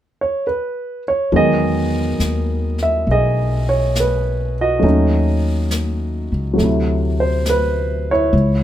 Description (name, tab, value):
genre	jazz ballad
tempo	68 BPM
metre	4/4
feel	swing 69% on 8ths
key	E major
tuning	A4 = 437 Hz
part	warm grand piano	accompaniment	0.2-8.6 s	C3 to E5	-18 LUFS	right 1 dB	none
part	upright bass	bass	1.3-8.6 s	B1 to E2	-19 LUFS	left 1 dB	none
part	jazz brush drum kit	drums	1.3-8.6 s	brushed snare drum, hi-hat, snare drum	-30 LUFS	left 2 dB	none
room	light reverb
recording	minimal, uncompressed stereo recording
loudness	-15 LUFS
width	side -12 dB against mid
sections	0.0-1.3 A section; 1.3-8.6 B section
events	none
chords	0.0 N.C.; 1.3 Emaj7; 4.8 D#m7b5; 6.6 D9